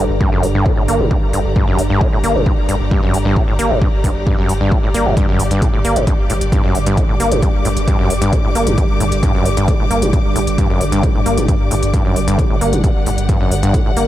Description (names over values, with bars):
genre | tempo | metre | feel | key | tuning
driving peak-time techno | 133 BPM | 4/4 | straight | G harmonic minor | A4 = 441 Hz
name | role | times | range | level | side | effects
overdriven acid bass | riff | 0.0-14.1 s | F#2 to Bb3 | -18 LUFS | equal | wide subtle chorus, sidechain pumping, dub echo
warm sub bass | bass | 0.0-14.1 s | G1 | -21 LUFS | equal | tube saturation, sidechain pumping, low-pass filter
deep dark ambient pad | drone | 0.0-14.1 s | G2 to D3 | -23 LUFS | right 1 dB | chorus, built-in reverb, sidechain pumping
clear studio string section | texture | 0.0-14.1 s | G3 to D6 | -24 LUFS | left 1 dB | sidechain pumping
electronic kick drum | drums | 0.2-13.8 s | none | -16 LUFS | equal | none
electronic hi-hat | drums | 0.4-14.1 s | none | -27 LUFS | left 2 dB | sidechain pumping on hats
room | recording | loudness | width
light reverb | none | -13 LUFS | side -13 dB against mid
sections
0.0-14.1 A section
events
fade-in on string section 0.0-14.1; filter sweep on acid bass 0.0-14.1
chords
0.0 G5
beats
0.21 0.66 1.11 | 1.56 2.01 2.46 2.91 | 3.37 3.82 4.27 4.72 | 5.17 5.62 6.07 6.52 | 6.97 7.42 7.88 8.33 | 8.78 9.23 9.68 10.13 | 10.58 11.03 11.48 11.94 | 12.39 12.84 13.29 13.74